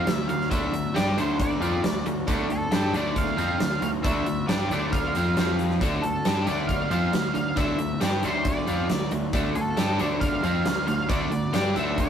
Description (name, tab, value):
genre	classic rock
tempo	136 BPM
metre	4/4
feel	straight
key	D minor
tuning	A4 = 439 Hz
part	octave-fuzz lead guitar	melody	0.0-12.1 s	A4 to F5	-30 LUFS	right 2 dB	distortion
part	overdriven electric guitar	riff	0.0-12.1 s	D3 to G4	-27 LUFS	equal	none
part	growling picked electric bass	bass	0.0-12.1 s	D2 to G2	-30 LUFS	left 1 dB	overdrive
part	huge arena drum kit	drums	0.1-12.1 s	hi-hat, kick drum, snare drum	-27 LUFS	equal	none
room	moderate stone room reverb, RT60 1.0 s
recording	rough rehearsal-room recording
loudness	-22 LUFS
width	side -8 dB against mid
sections	0.0-12.1 A section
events	none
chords	0.0 Dm; 5.4 F5; 5.8 Dm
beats	0.08 | 0.52 0.96 1.40 1.84 | 2.28 2.73 3.17 3.61 | 4.05 4.49 4.93 5.37 | 5.81 6.25 6.69 7.13 | 7.57 8.01 8.45 8.89 | 9.34 9.78 10.22 10.66 | 11.10 11.54 11.98